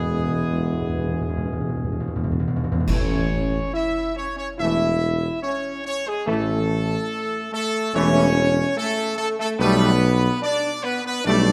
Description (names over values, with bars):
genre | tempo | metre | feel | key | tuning
classical, ceremonial fanfare | 65-73 BPM | 4/4 | straight | A major | A4 = 440 Hz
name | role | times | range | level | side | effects
bright trumpet section | melody | 0.0-11.5 s | G#4 to E5 | -28 LUFS | equal | none
mellow French horn section | sustained chords | 0.0-11.5 s | G#3 to E4 | -29 LUFS | equal | none
warm trombone section | sustained chords | 0.0-11.5 s | E3 to B3 | -27 LUFS | equal | none
mellow tuba | bass | 0.0-11.5 s | E1 to B1 | -26 LUFS | equal | none
timpani | percussion | 0.0-2.9 s | E2 | -28 LUFS | equal | none
clash cymbals and concert bass drum | percussion | 2.9-4.5 s | none | -31 LUFS | equal | none
room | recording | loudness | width
moderate scoring stage reverb, RT60 2.0 s | none | -22 LUFS | mono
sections
0.0-2.9 A section; 2.9-11.5 B section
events
timpani fill 0.0-2.9; band accent 2.9-3.7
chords
0.0 E; 2.9 A; 9.6 Gadd9/B